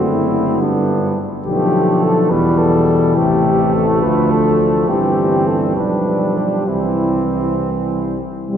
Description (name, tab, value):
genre	classical, brass quintet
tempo	66-71 BPM (dotted quarters)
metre	6/8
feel	straight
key	C major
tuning	A4 = 440 Hz
part	dark cornet	melody	0.0-8.6 s	D4 to B4	-19 LUFS	left 4 dB	none
part	warm flugelhorn	second line	0.0-8.6 s	G3 to E4	-22 LUFS	right 5 dB	none
part	bright trombone	accompaniment	0.0-8.6 s	B2 to F3	-22 LUFS	right 2 dB	none
part	dark French horn	accompaniment	0.0-8.6 s	E3 to A3	-20 LUFS	left 2 dB	none
part	warm tuba	bass	0.0-8.6 s	F#1 to E2	-20 LUFS	right 2 dB	none
room	wet cathedral reverb, RT60 5.3 s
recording	heard from further back in the room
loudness	-13 LUFS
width	side -8 dB against mid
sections	0.0-8.5 A section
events	none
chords	0.0 D7/F#; 0.6 G; 1.5 Bm7b5; 2.3 Em; 3.2 Am7; 4.0 Dm; 4.9 C/G; 5.8 G7/B; 6.7 C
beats	0.61 | 1.46 2.31 | 3.16 4.03 | 4.89 5.78 | 6.68 7.60 | 8.50